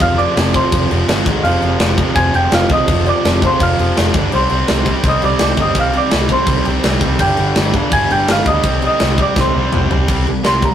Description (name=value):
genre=punk rock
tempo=167 BPM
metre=4/4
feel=straight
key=C minor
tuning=A4 = 439 Hz
part: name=worn celesta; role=melody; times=0.0-10.7 s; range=C5 to Ab6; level=-17 LUFS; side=right 1 dB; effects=none
part: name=raw garage guitar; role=riff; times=0.0-10.1 s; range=C3 to Eb5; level=-25 LUFS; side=right 1 dB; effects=overdrive
part: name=tight distorted guitar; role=riff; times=0.0-10.7 s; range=F2 to C4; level=-23 LUFS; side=left 6 dB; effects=distortion
part: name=tight distorted guitar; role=riff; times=0.0-10.7 s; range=F2 to C4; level=-21 LUFS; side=right 6 dB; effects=distortion
part: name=picked electric bass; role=bass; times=0.0-10.7 s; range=F1 to D2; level=-19 LUFS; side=left 1 dB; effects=none
part: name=tight metal drum kit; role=drums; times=0.0-10.7 s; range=crash cymbal, kick drum, snare drum, toms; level=-17 LUFS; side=equal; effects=none
room=moderate studio reverb, RT60 0.7 s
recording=rough rehearsal-room recording, tube saturation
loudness=-12 LUFS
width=side -10 dB against mid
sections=0.0-10.1 A section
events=drum fill 9.4-10.1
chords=0.0 Fm; 1.3 Ab5; 1.5 Fm; 4.1 G5; 4.3 Cm; 7.2 G; 8.6 Cm; 10.1 C5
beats=| 0.01 0.37 0.73 1.09 | 1.45 1.81 2.17 2.53 | 2.89 3.25 3.61 3.97 | 4.33 4.69 5.05 5.41 | 5.76 6.12 6.49 6.84 | 7.20 7.56 7.92 8.28 | 8.64 9.00 9.36 9.72 | 10.09 10.45